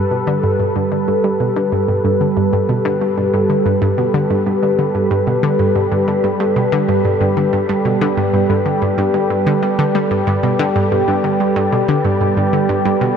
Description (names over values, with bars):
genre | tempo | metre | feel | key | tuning
ambient, sequencer-driven space music | 93 BPM | 4/4 | straight | G major | A4 = 440 Hz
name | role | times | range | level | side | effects
sweeping resonant pad | sustained chords | 0.0-13.2 s | G3 to B4 | -16 LUFS | equal | chorus
analog pluck | riff | 0.0-13.1 s | G2 to G3 | -18 LUFS | right 1 dB | chorus, analog delay
wind-like tuned noise texture | texture | 2.3-13.2 s | B3 to B4 | -32 LUFS | equal | built-in reverb, ensemble chorus
room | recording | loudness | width
wet huge ambient reverb, RT60 9.6 s | dreamy mix soaked in reverb | -14 LUFS | side -7 dB against mid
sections
0.0-13.2 A section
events
fade-in on synth texture 0.0-13.2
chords
0.0 Gadd9